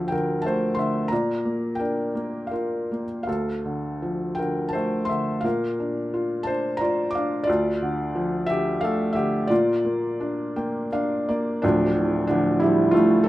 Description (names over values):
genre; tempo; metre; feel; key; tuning
classical, lyrical solo piano; 78-95 BPM; 3/4; rubato; D minor; A4 = 441 Hz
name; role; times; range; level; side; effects
felt-muted upright piano; solo; 0.0-13.3 s; D1 to D6; -21 LUFS; equal; none
room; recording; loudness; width
light reverb; minimal, uncompressed stereo recording; -22 LUFS; side -15 dB against mid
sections
0.0-11.6 A section; 11.6-13.3 A section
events
felt piano fill 10.2-11.6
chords
0.0 Dm7; 1.1 Bb; 3.3 Dm7; 5.5 Bb; 7.5 Dm; 9.5 Bb; 11.6 Dm